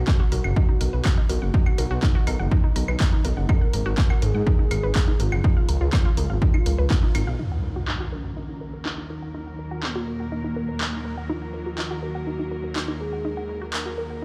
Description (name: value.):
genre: melodic techno.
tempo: 123 BPM.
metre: 4/4.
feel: straight.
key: Eb minor.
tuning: A4 = 439 Hz.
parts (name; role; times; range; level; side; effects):
soft octave-layered synth lead; melody; 0.0-14.2 s; Bb3 to Bb4; -35 LUFS; equal; chorus, sidechain pumping.
dark detuned saw bass; bass; 0.0-7.4 s; F#1 to Ab2; -25 LUFS; equal; sidechain pumping.
unison pluck; arpeggios; 0.1-14.2 s; D#4 to F#5; -36 LUFS; equal; sidechain pumping, tape echo.
electronic kick drum; drums; 0.1-7.0 s; none; -23 LUFS; equal; overdrive.
punchy analog drum machine; drums; 0.1-13.8 s; claves, handclaps, hi-hat; -34 LUFS; equal; overdrive, low-pass filter on snare, sidechain pumping on perc, low-pass filter on perc, sidechain pumping on hats, low-pass filter on hats, low-pass filter on room.
clear symphonic string section; sustained chords; 7.4-14.2 s; Eb2 to Bb4; -36 LUFS; equal; sidechain pumping, low-pass filter.
impact; sound effects; 7.4-9.3 s; none; -33 LUFS; equal; none.
room: little or no reverb.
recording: played on a big sound system in a bare room, large studio reverb.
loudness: -23 LUFS.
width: mono.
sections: 0.0-7.4 A section; 7.4-14.2 B section.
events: band accent 6.9; impact 7.4-9.3; filter sweep on soft synth lead 7.4-14.2; filter sweep on string section 7.4-14.2.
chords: 0.0 B; 3.5 Absus2; 5.4 Db; 7.4 Ebm.